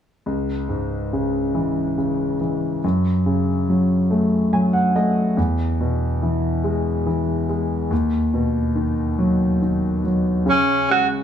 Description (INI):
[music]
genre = pop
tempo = 47 BPM (dotted quarters)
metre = 6/8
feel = straight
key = C# minor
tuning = A4 = 437 Hz
[part]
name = warm concert grand piano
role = accompaniment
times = 0.3-11.2 s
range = C#2 to G#5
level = -18 LUFS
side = equal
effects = none
[part]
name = warm tenor saxophone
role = melody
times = 10.5-11.1 s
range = C#4 to F#4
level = -16 LUFS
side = right 2 dB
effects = none
[sound]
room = light reverb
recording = small room ambience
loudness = -18 LUFS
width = side -9 dB against mid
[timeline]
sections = 0.3-10.5 A section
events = grand piano fill 4.1-5.4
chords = 0.3 C#m; 2.8 F#m; 5.4 E; 7.9 B/D#; 10.5 C#5